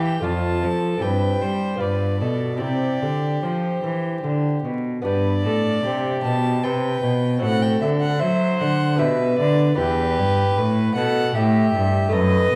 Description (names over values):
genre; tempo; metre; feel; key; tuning
classical, baroque-style sonata movement with continuo; 76 BPM; 3/4; straight; C major, G major from 5.0 s; A4 = 439 Hz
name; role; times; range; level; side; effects
rich violin; melody; 0.0-12.6 s; B4 to A5; -29 LUFS; equal; none
rich violin; second line; 0.0-12.6 s; F4 to C5; -28 LUFS; equal; none
lute; accompaniment; 0.0-12.6 s; E2 to D5; -29 LUFS; equal; none
rich cello; bass; 0.0-12.6 s; E2 to G3; -24 LUFS; equal; none
room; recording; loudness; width
moderate recital hall reverb, RT60 1.5 s; vinyl crackle; -21 LUFS; mono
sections
0.0-5.0 A section; 5.0-12.6 A section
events
none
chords
0.2 Dm/F; 1.0 C/G; 1.8 G7; 2.6 C; 5.0 G; 7.4 F#dim/A; 9.0 G/B; 9.8 Em